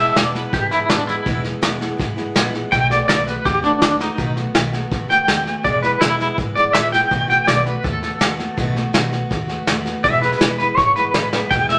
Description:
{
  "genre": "rockabilly",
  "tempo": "164 BPM",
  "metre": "4/4",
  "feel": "straight",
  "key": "E major",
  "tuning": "A4 = 440 Hz",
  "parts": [
    { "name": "clean electric guitar", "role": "melody", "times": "0.0-11.8 s", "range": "D4 to G5", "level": "-19 LUFS", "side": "equal", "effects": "tremolo" },
    { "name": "picked steel-string acoustic guitar", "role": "accompaniment", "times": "0.0-11.8 s", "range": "E2 to F#4", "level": "-28 LUFS", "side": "equal", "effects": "none" },
    { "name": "upright bass", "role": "bass", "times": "0.0-11.8 s", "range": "E1 to E2", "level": "-29 LUFS", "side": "equal", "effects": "none" },
    { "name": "vintage brush drum kit", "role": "drums", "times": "0.2-11.7 s", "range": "hi-hat, kick drum, snare drum", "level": "-23 LUFS", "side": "equal", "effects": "none" }
  ],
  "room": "moderate studio reverb, RT60 0.7 s",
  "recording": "none",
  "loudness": "-18 LUFS",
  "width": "mono",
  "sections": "0.0-11.5 A section",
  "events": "drum fill 11.3",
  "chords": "0.0 E; 2.7 B7; 5.6 E; 7.1 B7; 10.0 E"
}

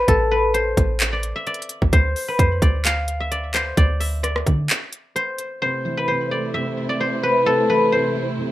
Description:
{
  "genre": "hip hop, trap",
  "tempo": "130 BPM",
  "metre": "4/4",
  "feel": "half-time",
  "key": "A minor",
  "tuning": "A4 = 440 Hz",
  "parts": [
    { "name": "guzheng", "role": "melody", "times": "0.0-8.5 s", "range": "A4 to F5", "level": "-20 LUFS", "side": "left 1 dB", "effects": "low-pass filter, digital delay" },
    { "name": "clean 808-style bass", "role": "bass", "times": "0.0-4.7 s", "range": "A1 to D3", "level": "-22 LUFS", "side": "equal", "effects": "none" },
    { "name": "trap drum kit", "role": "drums", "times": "0.1-5.5 s", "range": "handclaps, hi-hat, kick drum, rim click", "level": "-20 LUFS", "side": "equal", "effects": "none" },
    { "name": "dark concert grand piano", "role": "accompaniment", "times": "5.6-8.5 s", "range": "C3 to C5", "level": "-28 LUFS", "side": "right 1 dB", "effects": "low-pass filter" },
    { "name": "warm studio string section", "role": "sustained chords", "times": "5.6-8.5 s", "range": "C3 to C5", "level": "-26 LUFS", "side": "right 1 dB", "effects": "none" }
  ],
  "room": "little or no reverb",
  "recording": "rough home demo mix",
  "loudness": "-18 LUFS",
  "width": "side -15 dB against mid",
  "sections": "0.0-5.6 A section; 5.6-8.5 B section",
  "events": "break 4.7-5.6",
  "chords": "0.0 Am; 1.9 D7(no3); 5.6 Am"
}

